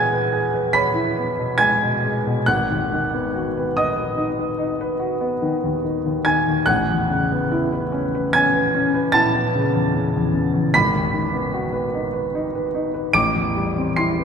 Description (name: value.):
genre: classical, impressionist solo piano.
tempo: 69-76 BPM.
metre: 5/4.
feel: rubato.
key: unclear.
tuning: A4 = 441 Hz.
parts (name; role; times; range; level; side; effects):
clear grand piano; solo; 0.0-14.2 s; G#1 to D7; -18 LUFS; equal; none.
room: wet cathedral reverb, RT60 4.7 s.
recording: recorded in a church or concert hall.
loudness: -18 LUFS.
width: side -6 dB against mid.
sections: 0.0-14.2 A section.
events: none.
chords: 0.0 E6; 2.5 G#m7; 6.7 Aadd9; 10.7 G#m7; 13.1 Am7.